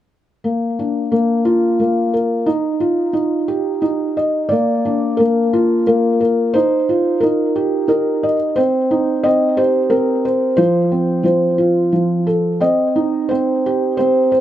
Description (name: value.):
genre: children's music, lullaby.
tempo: 88 BPM.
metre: 3/4.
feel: straight.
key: Bb major.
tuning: A4 = 437 Hz.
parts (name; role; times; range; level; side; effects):
felt-muted upright piano; solo; 0.4-14.4 s; F3 to Eb5; -14 LUFS; equal; tape echo.
room: light reverb.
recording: dark, warm production.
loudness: -14 LUFS.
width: side -12 dB against mid.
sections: 0.4-4.5 A section; 4.5-14.4 B section.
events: none.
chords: 0.4 Bb; 2.5 Ebadd9; 4.5 Bb; 6.5 Ebadd9; 8.6 Cm; 10.6 F; 12.6 Cm.